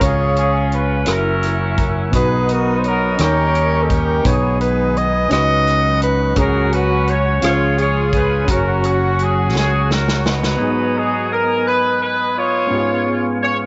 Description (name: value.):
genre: slow gospel.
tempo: 57 BPM (dotted quarters).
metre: 6/8.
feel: straight.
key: F# major.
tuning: A4 = 440 Hz.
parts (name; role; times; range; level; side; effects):
breathy tenor saxophone; melody; 0.0-9.9 s; E#4 to D#5; -22 LUFS; equal; none.
clear horn section; melody; 0.0-13.6 s; B3 to C#5; -22 LUFS; equal; none.
warm concert grand piano; accompaniment; 0.0-13.7 s; G#2 to A#5; -25 LUFS; equal; none.
tonewheel organ; sustained chords; 0.0-13.7 s; G#3 to D#6; -28 LUFS; equal; slow rotary speaker, overdrive.
fingered electric bass; bass; 0.0-10.6 s; F#1 to D#2; -22 LUFS; equal; none.
natural country drum kit; drums; 0.0-10.6 s; hi-hat, kick drum, rim click, snare drum; -24 LUFS; equal; none.
warm studio string section; sustained chords; 2.1-10.6 s; D#3 to F#4; -32 LUFS; equal; none.
room: moderate spring reverb, RT60 2.6 s.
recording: nothing above 7.9 kHz.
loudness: -17 LUFS.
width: mono.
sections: 0.0-10.6 A section; 10.6-13.7 B section.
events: drum fill 9.5-10.6.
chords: 0.0 C#; 1.1 F#7; 2.1 B; 3.2 D#7; 4.3 G#m/B; 5.3 C#9sus4; 6.4 F#/C#; 7.4 C#; 8.5 F#; 10.6 G#m7; 12.7 C#7/G#.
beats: | 0.01 1.07 | 2.13 3.19 | 4.25 5.31 | 6.37 7.43 | 8.48 9.54 | 10.59 11.65 | 12.70.